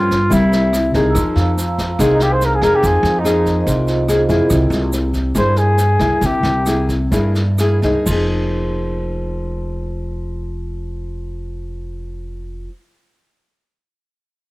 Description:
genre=bossa nova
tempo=121-144 BPM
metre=4/4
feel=straight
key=F minor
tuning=A4 = 439 Hz
part: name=dark trumpet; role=melody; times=0.0-6.9 s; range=Eb4 to C5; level=-18 LUFS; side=equal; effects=cassette tape
part: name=nylon-string guitar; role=accompaniment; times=0.0-12.7 s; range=G2 to Ab4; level=-18 LUFS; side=left 1 dB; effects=cassette tape
part: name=upright bass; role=bass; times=0.0-12.7 s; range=F1 to G2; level=-20 LUFS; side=equal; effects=none
part: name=vintage brush drum kit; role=drums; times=0.1-8.2 s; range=crash cymbal, kick drum, rim click, snare drum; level=-26 LUFS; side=equal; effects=none
part: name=tube shaker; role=percussion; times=0.1-8.2 s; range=none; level=-32 LUFS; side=right 5 dB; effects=none
part: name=vibraphone with medium mallets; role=accompaniment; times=0.9-4.9 s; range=F4 to E6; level=-24 LUFS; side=right 2 dB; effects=cassette tape
room=light reverb, small room reverb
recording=home recording on cassette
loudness=-14 LUFS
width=side -19 dB against mid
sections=0.0-1.2 A section; 1.2-8.1 B section; 8.1-12.0 C section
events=trumpet solo 1.2-8.1; slowing down 4.5-8.1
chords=0.3 C7; 1.2 Fm7; 4.5 C7b13; 8.1 Fm7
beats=0.32 0.73 | 1.15 1.57 1.99 2.41 | 2.83 3.24 3.66 4.08 | 4.50 4.92 5.34 5.77 | 6.21 6.66 7.11 7.58 | 8.07 8.56 9.06 9.55 | 10.04 10.54 11.03 11.53

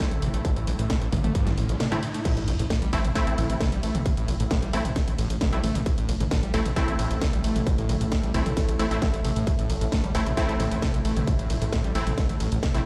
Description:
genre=driving peak-time techno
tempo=133 BPM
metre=4/4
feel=straight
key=A phrygian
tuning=A4 = 440 Hz
part: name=screaming distorted acid line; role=riff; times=0.0-12.8 s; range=A1 to A3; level=-34 LUFS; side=equal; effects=distortion, subtle chorus, sidechain pumping, delay
part: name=supersaw stab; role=stabs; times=0.0-12.8 s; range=A3 to E4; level=-34 LUFS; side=equal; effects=sidechain pumping, delay
part: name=analog drone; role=drone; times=0.0-12.9 s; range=A2 to A3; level=-36 LUFS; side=equal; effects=chorus, sidechain pumping
part: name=electronic kick drum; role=drums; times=0.0-12.7 s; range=none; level=-29 LUFS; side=equal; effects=distortion
part: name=techno drum kit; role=drums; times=0.0-12.8 s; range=crash cymbal, hi-hat, ride cymbal, snare drum, toms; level=-34 LUFS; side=equal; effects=none
part: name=riser and sub drop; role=sound effects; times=0.5-4.1 s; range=none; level=-38 LUFS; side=equal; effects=none
part: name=gritty driven synth bass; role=bass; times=0.1-12.8 s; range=A1 to Bb1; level=-31 LUFS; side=equal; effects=tube saturation, sidechain pumping
room=light reverb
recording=played on a big sound system in a bare room, stone room reverb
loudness=-25 LUFS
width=mono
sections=0.0-2.3 A section; 2.3-12.9 B section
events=kick drops out 1.8-2.3; drop 2.3-12.9; impact 2.3-4.1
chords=0.0 Am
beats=0.00 | 0.45 0.90 1.35 1.80 | 2.25 2.70 3.15 3.61 | 4.06 4.51 4.96 5.41 | 5.86 6.31 6.76 7.21 | 7.67 8.12 8.57 9.02 | 9.47 9.92 10.37 10.82 | 11.28 11.73 12.18 12.63

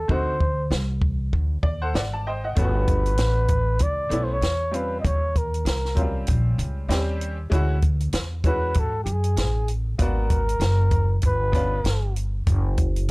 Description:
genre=hip hop, jazz-hop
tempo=97 BPM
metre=4/4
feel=swing 58% on 16ths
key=unclear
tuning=A4 = 442 Hz
part: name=breathy flugelhorn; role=melody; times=0.0-12.1 s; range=G4 to D#5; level=-26 LUFS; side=equal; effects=none
part: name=upright bass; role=bass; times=0.0-13.1 s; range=F#1 to G#2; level=-23 LUFS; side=equal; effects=none
part: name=bright upright piano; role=accompaniment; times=0.1-11.8 s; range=F#3 to A5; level=-29 LUFS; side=equal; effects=none
part: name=compact cocktail drum kit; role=drums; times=0.1-13.1 s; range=hi-hat, kick drum, snare drum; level=-24 LUFS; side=equal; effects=none
room=little or no reverb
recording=dry, gritty hardware recording, cassette tape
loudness=-20 LUFS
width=side -26 dB against mid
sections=0.0-12.5 A section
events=hi-hats muted 0.1-2.6; upright piano fill 1.3-2.6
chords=0.1 D7b9; 2.6 Gmaj9#11; 5.0 D#13; 7.5 Dmaj9#11; 10.0 G#m7b5; 11.2 G7#11; 12.5 N.C.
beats=| 0.10 0.71 1.33 1.95 | 2.57 3.19 3.81 4.42 | 5.04 5.66 6.28 6.90 | 7.52 8.14 8.76 9.37 | 9.99 10.61 11.23 11.85 | 12.47 13.09

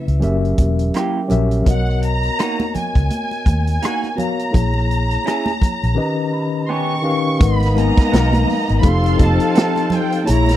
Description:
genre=lush 1970s-style soul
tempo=84 BPM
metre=4/4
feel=swing 58% on 16ths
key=G# dorian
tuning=A4 = 440 Hz
part: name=warm studio violin section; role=melody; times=0.0-10.6 s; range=F#5 to C#6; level=-23 LUFS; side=right 1 dB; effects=none
part: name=tine electric piano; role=accompaniment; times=0.0-10.6 s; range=C#3 to B5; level=-21 LUFS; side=left 3 dB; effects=medium stereo tremolo
part: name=vintage muted fingered electric bass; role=bass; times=0.1-10.6 s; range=E1 to D#2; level=-17 LUFS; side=equal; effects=none
part: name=vintage drum kit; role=drums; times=0.1-10.6 s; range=hi-hat, kick drum, rim click, snare drum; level=-16 LUFS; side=equal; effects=none
part: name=congas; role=percussion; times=0.2-10.6 s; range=none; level=-26 LUFS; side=right 3 dB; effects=none
part: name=electric guitar through a small old amp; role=riff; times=0.9-9.8 s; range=A#3 to A#4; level=-26 LUFS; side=right 6 dB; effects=spring reverb
part: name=muted studio string section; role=second line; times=7.4-10.6 s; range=A#3 to A#5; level=-23 LUFS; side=right 3 dB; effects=none
room=small room ambience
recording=dry, close 1970s-style studio recording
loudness=-15 LUFS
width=side -13 dB against mid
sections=0.0-7.4 A section; 7.4-10.6 B section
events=tine electric piano fill 6.0-7.4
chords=0.2 F#7b9; 1.7 Bmaj7; 4.5 A#m7b5; 6.0 D#7b13; 7.4 G#m9; 8.8 F7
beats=0.23 0.95 | 1.67 2.38 3.10 3.82 | 4.54 5.26 5.97 6.69 | 7.41 8.12 8.84 9.56 | 10.27

